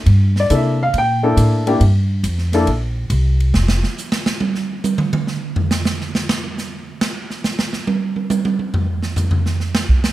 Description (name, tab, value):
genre	jazz, small-group swing and bop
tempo	138 BPM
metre	4/4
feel	swing 68% on 8ths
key	C mixolydian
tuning	A4 = 437 Hz
part	upright bass	bass	0.1-3.8 s	F1 to C3	-15 LUFS	equal	none
part	swinging big-band drum kit	drums	0.1-10.1 s	hi-hat, kick drum, ride cymbal, snare drum, toms	-19 LUFS	right 2 dB	none
part	warm baby grand piano	accompaniment	0.4-2.7 s	Bb3 to G5	-16 LUFS	left 2 dB	none
room	light reverb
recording	none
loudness	-16 LUFS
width	side -15 dB against mid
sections	0.0-10.1 A section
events	drum solo 3.5-10.1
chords	0.0 C13; 3.5 N.C.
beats	| 0.06 0.50 0.94 1.37 | 1.80 2.24 2.67 3.11 | 3.54 3.98 4.41 4.84 | 5.28 5.71 6.14 6.58 | 7.01 7.44 7.88 8.31 | 8.74 9.17 9.61 10.04